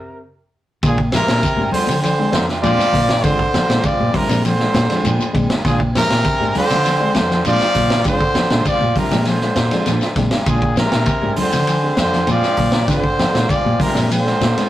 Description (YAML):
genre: afrobeat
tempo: 100 BPM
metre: 4/4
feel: straight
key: Bb mixolydian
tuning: A4 = 440 Hz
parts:
  - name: bright trumpet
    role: melody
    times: 0.0-14.7 s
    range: Ab4 to D5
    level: -20 LUFS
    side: left 1 dB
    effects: none
  - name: breathy trombone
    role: second line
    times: 0.0-14.7 s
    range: Bb2 to F3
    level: -22 LUFS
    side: right 2 dB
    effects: none
  - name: semi-hollow electric guitar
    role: arpeggios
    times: 0.8-14.7 s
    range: D3 to Ab3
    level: -26 LUFS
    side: left 2 dB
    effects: spring reverb
  - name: clean electric guitar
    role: stabs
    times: 0.8-14.7 s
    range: Ab3 to C5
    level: -28 LUFS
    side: right 4 dB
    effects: none
  - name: hollow-body short-scale fingered electric bass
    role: bass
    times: 0.8-14.5 s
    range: F2 to D3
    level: -21 LUFS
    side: equal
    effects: none
  - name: vintage drum kit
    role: drums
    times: 0.8-14.7 s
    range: hi-hat, kick drum, ride cymbal, snare drum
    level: -20 LUFS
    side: equal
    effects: none
  - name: congas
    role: percussion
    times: 0.8-14.6 s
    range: none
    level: -26 LUFS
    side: left 2 dB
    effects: none
  - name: shekere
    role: percussion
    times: 0.8-14.7 s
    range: none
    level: -30 LUFS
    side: left 2 dB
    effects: none
  - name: bright reed electric piano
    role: accompaniment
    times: 1.1-14.7 s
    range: Ab3 to F4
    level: -27 LUFS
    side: left 1 dB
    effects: none
room: wet studio reverb, RT60 0.6 s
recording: rough rehearsal-room recording, tube saturation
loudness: -14 LUFS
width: side -13 dB against mid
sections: 0.8-14.7 A section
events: stop 0.0-0.8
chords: 0.0 Bbsus2; 0.8 Bb9